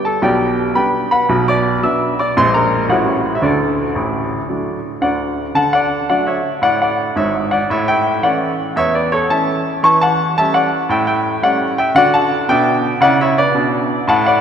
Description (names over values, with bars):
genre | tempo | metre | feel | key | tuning
jazz, stride piano | 112 BPM | 4/4 | swing 66% on 8ths | D major | A4 = 436 Hz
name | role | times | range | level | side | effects
clear grand piano | solo | 0.0-14.4 s | G#1 to E6 | -13 LUFS | equal | none
room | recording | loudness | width
wet cathedral reverb, RT60 4.4 s | recorded in a church or concert hall | -13 LUFS | side -8 dB against mid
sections
0.0-5.6 A section; 5.6-14.4 B section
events
none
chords
0.2 G/B; 1.3 Bm; 2.4 Bb7; 2.9 A7; 3.4 D; 7.7 A; 9.8 A7/E; 12.0 D